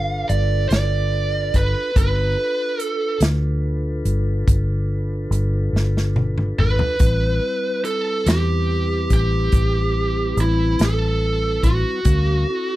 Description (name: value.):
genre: slow blues.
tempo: 48 BPM (dotted quarters).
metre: 12/8.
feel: straight.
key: G mixolydian.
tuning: A4 = 440 Hz.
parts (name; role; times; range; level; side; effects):
lead guitar through a small cranked amp; melody; 0.0-12.8 s; E4 to F5; -22 LUFS; right 2 dB; overdrive, slapback echo.
mellow tonewheel organ; sustained chords; 0.0-12.8 s; G3 to Bb5; -30 LUFS; left 2 dB; slow rotary speaker.
vintage muted fingered electric bass; bass; 0.0-12.4 s; G1 to E2; -20 LUFS; equal; none.
natural country drum kit; drums; 0.3-12.2 s; hi-hat, kick drum, snare drum, toms; -19 LUFS; equal; none.
room: little or no reverb.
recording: dry, close 1970s-style studio recording.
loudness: -17 LUFS.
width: side -16 dB against mid.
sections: 0.0-12.8 A section.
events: drum fill 5.7-7.0.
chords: 0.0 G9; 7.0 Am7; 12.0 D9.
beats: 0.70 | 1.96 3.22 4.48 5.74 | 7.00 8.26 9.53 10.79 | 12.05.